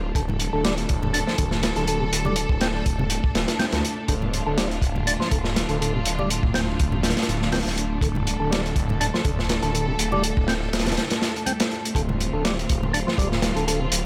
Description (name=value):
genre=breakbeat, breaks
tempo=122 BPM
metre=4/4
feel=swing 54% on 16ths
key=D minor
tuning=A4 = 439 Hz
part: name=clear symphonic string section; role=sustained chords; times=0.0-14.1 s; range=A3 to A4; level=-32 LUFS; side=equal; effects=vintage 12-bit sampler grit, sidechain pumping
part: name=phased detuned saw bass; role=bass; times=0.0-14.1 s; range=D1 to D2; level=-30 LUFS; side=equal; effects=phaser
part: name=percussive tonewheel organ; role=riff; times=0.2-13.9 s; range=C3 to D4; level=-31 LUFS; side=equal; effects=overdrive, slow rotary speaker, digital delay
part: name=crunchy breakbeat drum kit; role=drums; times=0.2-14.0 s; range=hi-hat, kick drum, snare drum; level=-26 LUFS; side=equal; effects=none
part: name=congas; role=percussion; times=0.3-13.5 s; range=none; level=-35 LUFS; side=equal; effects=none
room=small room ambience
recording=none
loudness=-23 LUFS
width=mono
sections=0.0-14.1 A section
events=none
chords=0.0 Dm